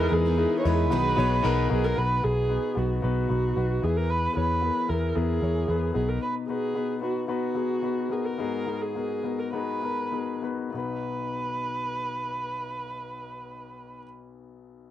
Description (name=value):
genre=piano-driven pop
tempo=96-113 BPM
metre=4/4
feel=straight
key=B major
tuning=A4 = 442 Hz
part: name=dark viola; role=melody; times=0.0-14.0 s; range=F#4 to C#5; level=-29 LUFS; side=right 3 dB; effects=none
part: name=warm concert grand piano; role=accompaniment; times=0.0-14.9 s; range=B1 to C#5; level=-30 LUFS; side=left 7 dB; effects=none
part: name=warm studio string section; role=sustained chords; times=0.0-2.0 s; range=none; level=barely audible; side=none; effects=none
part: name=picked steel-string acoustic guitar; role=riff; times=0.0-2.0 s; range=B2 to G#4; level=-30 LUFS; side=right 7 dB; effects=none
part: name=vintage muted picked electric bass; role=bass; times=0.0-6.2 s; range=B1 to E2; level=-26 LUFS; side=right 1 dB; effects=none
room=light reverb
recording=dry, close 1970s-style studio recording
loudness=-24 LUFS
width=side -12 dB against mid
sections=0.0-2.0 A section; 2.0-10.7 B section; 10.7-14.9 C section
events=slowing down 6.2-10.7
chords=0.0 Emaj7; 0.9 B6; 2.0 B; 3.8 E; 6.0 B; 8.4 G#m7; 10.7 B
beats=0.39 0.92 1.45 | 1.98 2.50 3.04 3.57 | 4.10 4.63 5.16 5.69 | 6.22 6.75 7.29 7.84 | 8.39 8.96 9.54 10.13 | 10.75 11.37 12.00 12.63 | 13.25 13.88 14.50